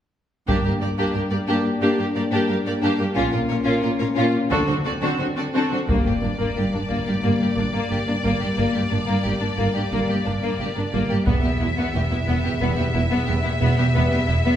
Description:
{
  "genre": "cinematic, epic orchestral film score",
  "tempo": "89 BPM",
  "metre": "4/4",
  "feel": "straight",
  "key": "unclear",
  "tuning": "A4 = 440 Hz",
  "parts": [
    { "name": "rich symphonic violin section", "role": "second line", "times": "0.5-14.6 s", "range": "Bb3 to D5", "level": "-27 LUFS", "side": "left 2 dB", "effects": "none" },
    { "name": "clear symphonic viola section", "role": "accompaniment", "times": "0.5-14.6 s", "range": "Bb3 to G4", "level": "-25 LUFS", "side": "equal", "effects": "none" },
    { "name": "mellow French horn section", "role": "sustained chords", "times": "0.5-14.2 s", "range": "F#3 to D4", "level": "-28 LUFS", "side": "left 3 dB", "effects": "none" },
    { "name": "rich symphonic cello section", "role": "bass", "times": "0.5-14.5 s", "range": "E2 to D3", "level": "-25 LUFS", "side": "right 2 dB", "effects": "none" },
    { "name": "rich symphonic double bass section", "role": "bass", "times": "0.5-14.4 s", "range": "E1 to D2", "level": "-26 LUFS", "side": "right 2 dB", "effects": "none" },
    { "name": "solo taiko drums", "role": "drums", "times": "0.5-1.8, 5.9-7.2, 11.3-12.6 s", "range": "none", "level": "-25 LUFS", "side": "equal", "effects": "none" },
    { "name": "rich symphonic violin section", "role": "melody", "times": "5.9-14.6 s", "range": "D5 to E5", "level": "-29 LUFS", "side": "left 2 dB", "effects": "none" },
    { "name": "impact", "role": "sound effects", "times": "5.9-8.6 s", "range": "none", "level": "-33 LUFS", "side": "equal", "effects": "none" }
  ],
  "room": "wet recital hall reverb, RT60 1.7 s",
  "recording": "recorded in a church or concert hall",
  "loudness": "-19 LUFS",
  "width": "side -10 dB against mid",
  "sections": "0.5-5.9 A section; 5.9-14.6 B section",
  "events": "build-up 5.9-14.6; impact 5.9-8.6",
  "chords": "0.5 Gm; 3.2 Bbm; 4.5 D7; 5.9 Gm; 11.3 Em",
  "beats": "| 0.48 1.16 1.83 2.50 | 3.17 3.84 4.52 5.20 | 5.89 6.57 7.24 7.91 | 8.59 9.26 9.93 10.60 | 11.27 11.95 12.62 13.29 | 13.96"
}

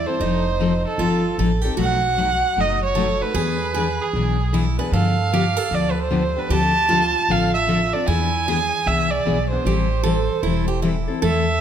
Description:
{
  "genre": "acoustic string swing (jazz manouche)",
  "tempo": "153 BPM",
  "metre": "4/4",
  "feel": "swing 63% on 8ths",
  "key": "A minor",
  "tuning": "A4 = 440 Hz",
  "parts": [
    { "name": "warm violin", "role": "melody", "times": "0.0-11.6 s", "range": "G#4 to A5", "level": "-22 LUFS", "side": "right 3 dB", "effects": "none" },
    { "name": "picked steel-string acoustic guitar", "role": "second line", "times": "0.0-11.6 s", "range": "Eb4 to B4", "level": "-26 LUFS", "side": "right 4 dB", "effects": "none" },
    { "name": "upright bass", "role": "bass", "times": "0.0-11.6 s", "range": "E1 to G2", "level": "-24 LUFS", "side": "equal", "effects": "none" },
    { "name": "picked steel-string acoustic guitar", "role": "accompaniment", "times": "0.1-11.4 s", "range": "B2 to A4", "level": "-23 LUFS", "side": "left 4 dB", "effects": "none" }
  ],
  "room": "moderate recital hall reverb, RT60 1.8 s",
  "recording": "none",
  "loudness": "-18 LUFS",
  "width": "side -9 dB against mid",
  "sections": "0.0-11.2 A section",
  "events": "none",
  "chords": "0.2 F7; 1.8 B7; 3.4 E7; 4.9 G7; 6.5 Dm7; 8.1 E7; 9.6 Am7",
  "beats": "| 0.20 0.60 0.99 1.39 | 1.78 2.17 2.57 2.96 | 3.35 3.75 4.14 4.53 | 4.93 5.32 5.71 6.11 | 6.50 6.89 7.29 7.68 | 8.07 8.46 8.86 9.25 | 9.64 10.04 10.43 10.82 | 11.21 11.61"
}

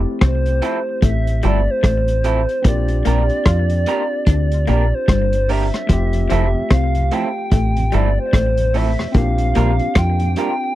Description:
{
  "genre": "lovers rock reggae",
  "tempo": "74 BPM",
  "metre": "4/4",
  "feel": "swing 60% on 16ths",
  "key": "F major",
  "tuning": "A4 = 439 Hz",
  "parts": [
    { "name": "overdriven tine electric piano", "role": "accompaniment", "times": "0.0-10.8 s", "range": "A3 to G4", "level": "-27 LUFS", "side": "left 2 dB", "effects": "tape echo" },
    { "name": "deep dub fingered electric bass", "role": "bass", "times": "0.0-10.3 s", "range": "F1 to F2", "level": "-17 LUFS", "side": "equal", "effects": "none" },
    { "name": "reedy FM lead", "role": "melody", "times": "0.2-10.8 s", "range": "C5 to G5", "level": "-22 LUFS", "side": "equal", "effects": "chorus, tape echo" },
    { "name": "electric guitar through a small old amp", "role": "riff", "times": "0.2-10.2 s", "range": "F3 to F4", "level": "-27 LUFS", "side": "left 8 dB", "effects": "tape echo" },
    { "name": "vintage drum kit", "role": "drums", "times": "0.2-10.6 s", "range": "hi-hat, kick drum, rim click", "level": "-17 LUFS", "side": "equal", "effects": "none" },
    { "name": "electric guitar through a small old amp", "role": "stabs", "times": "0.6-10.5 s", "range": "F3 to Bb4", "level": "-22 LUFS", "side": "right 6 dB", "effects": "vibrato effect" },
    { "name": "mellow tonewheel organ", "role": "accompaniment", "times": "6.1-10.5 s", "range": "F2 to E4", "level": "-30 LUFS", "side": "right 6 dB", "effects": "overdrive, chorus vibrato, slow rotary speaker, tape echo" }
  ],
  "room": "little or no reverb",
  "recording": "dry, close 1970s-style studio recording",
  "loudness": "-15 LUFS",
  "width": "side -15 dB against mid",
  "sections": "0.0-10.8 A section",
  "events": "none",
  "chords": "0.0 Fmaj7; 2.6 Bb6; 5.9 Fmaj7; 9.1 Bb6",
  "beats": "0.21 1.02 1.84 | 2.65 3.46 4.27 5.09 | 5.90 6.71 7.52 8.34 | 9.15 9.96"
}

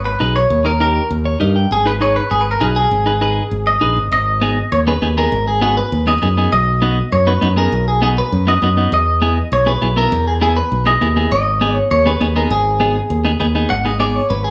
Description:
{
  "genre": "latin",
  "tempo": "200 BPM",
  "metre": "4/4",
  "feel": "straight",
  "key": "G# harmonic minor, G# minor from 4.1 s",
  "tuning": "A4 = 440 Hz",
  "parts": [
    { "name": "modern bright fingered electric bass", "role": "bass", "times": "0.0-14.5 s", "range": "G#1 to G2", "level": "-20 LUFS", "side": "equal", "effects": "none" },
    { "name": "clean electric guitar", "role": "melody", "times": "0.1-14.5 s", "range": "G#4 to F#5", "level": "-19 LUFS", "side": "equal", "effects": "spring reverb" },
    { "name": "clean electric guitar", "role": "accompaniment", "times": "0.2-14.2 s", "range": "B3 to G5", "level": "-21 LUFS", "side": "equal", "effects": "none" }
  ],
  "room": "moderate studio ambience, RT60 0.4 s",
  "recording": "studio ambience",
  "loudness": "-16 LUFS",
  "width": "mono",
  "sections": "0.0-4.1 A section; 4.1-13.7 B section",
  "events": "clean electric guitar fill 1.1-1.7",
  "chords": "0.0 G#m; 0.5 D#; 1.7 G#m; 6.5 B; 8.9 E; 11.3 G#m",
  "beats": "0.21 | 0.51 0.81 1.11 1.41 | 1.71 2.01 2.31 2.61 | 2.91 3.21 3.52 3.82 | 4.12 4.42 4.72 5.02 | 5.32 5.62 5.92 6.22 | 6.52 6.82 7.12 7.42 | 7.72 8.02 8.32 8.62 | 8.92 9.22 9.52 9.82 | 10.12 10.42 10.72 11.02 | 11.32 11.62 11.91 12.21 | 12.51 12.81 13.11 13.41 | 13.71 14.00 14.30"
}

